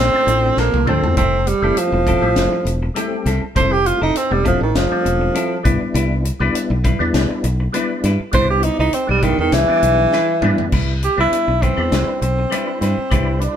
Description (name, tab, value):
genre	electric jazz fusion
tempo	101 BPM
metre	4/4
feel	swing 54% on 16ths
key	C major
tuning	A4 = 445 Hz
part	mellow tenor saxophone	melody	0.0-13.6 s	Eb3 to C5	-17 LUFS	right 2 dB	none
part	fingered electric bass	bass	0.0-13.5 s	E1 to G2	-19 LUFS	equal	none
part	percussive tonewheel organ	accompaniment	0.1-13.6 s	F3 to B4	-24 LUFS	left 2 dB	slow rotary speaker, chorus vibrato
part	semi-hollow electric guitar	stabs	0.1-13.5 s	F3 to B4	-27 LUFS	left 2 dB	none
part	tight funk drum kit	drums	0.3-13.6 s	crash cymbal, hi-hat, kick drum, snare drum, toms	-23 LUFS	left 1 dB	none
room	moderate stone room reverb, RT60 1.2 s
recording	band playing live in one room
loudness	-15 LUFS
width	side -9 dB against mid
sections	0.0-10.7 A section; 10.7-13.6 B section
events	tenor saxophone solo 0.0-10.7; drum fill 0.6-1.2, 10.1-10.7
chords	0.0 Bbmaj9; 1.2 Fmaj9; 5.6 Cmaj9